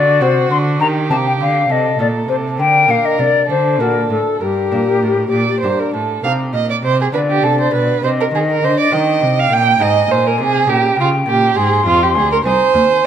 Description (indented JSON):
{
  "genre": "classical, baroque-style sonata movement with continuo",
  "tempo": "67 BPM (dotted quarters)",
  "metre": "6/8",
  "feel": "straight",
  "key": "G minor, C minor from 6.2 s",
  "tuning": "A4 = 438 Hz",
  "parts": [
    { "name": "hollow concert flute", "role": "melody", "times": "0.0-13.1 s", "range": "G4 to C6", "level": "-16 LUFS", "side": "left 5 dB", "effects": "none" },
    { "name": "dark violin", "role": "second line", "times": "0.0-13.1 s", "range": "F4 to G5", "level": "-16 LUFS", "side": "right 6 dB", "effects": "none" },
    { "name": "lute", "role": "accompaniment", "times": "0.0-13.1 s", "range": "D2 to A4", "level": "-23 LUFS", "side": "left 2 dB", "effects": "none" },
    { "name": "rich cello", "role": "bass", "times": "0.0-13.1 s", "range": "C2 to Eb3", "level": "-19 LUFS", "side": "right 1 dB", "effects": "none" }
  ],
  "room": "moderate recital hall reverb, RT60 1.5 s",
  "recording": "none",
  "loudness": "-12 LUFS",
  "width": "side -9 dB against mid",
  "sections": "0.0-6.2 A section; 6.2-13.1 A section",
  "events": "none",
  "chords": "0.0 D7; 0.8 Eb; 1.7 Adim; 2.6 Gm; 3.5 D; 4.4 Gm; 6.2 Cm; 7.1 Bdim; 8.0 Cm; 9.8 Ab; 10.7 Gdim/Bb; 11.6 Ab",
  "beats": "| 0.81 1.70 | 2.59 3.49 | 4.40 5.32 | 6.23 7.13 | 8.03 8.92 | 9.80 10.68 | 11.56 12.45"
}